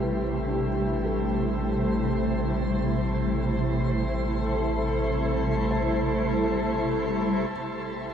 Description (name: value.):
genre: ambient.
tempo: free time.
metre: none.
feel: none.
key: A minor.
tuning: A4 = 440 Hz.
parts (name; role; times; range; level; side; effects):
granular cloud pad; sustained chords; 0.0-8.1 s; C3 to A4; -25 LUFS; equal; built-in reverb.
felt-muted upright piano; arpeggios; 0.0-8.0 s; D3 to A5; -38 LUFS; equal; ping-pong delay.
warm sub bass; bass; 0.0-8.1 s; A1; -32 LUFS; equal; none.
twinkling granular texture; texture; 0.0-8.1 s; C5 to C6; -35 LUFS; right 1 dB; built-in reverb.
room: wet shimmer reverb, RT60 8.1 s.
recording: dark, warm production.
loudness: -24 LUFS.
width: side -8 dB against mid.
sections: 0.0-7.5 A section.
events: fade-in on felt piano 0.0-7.5; fade-in on sub bass 0.0-7.5; fade-in on synth texture 0.0-7.5; filter sweep on ambient pad 0.0-7.5.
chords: 0.0 Am7.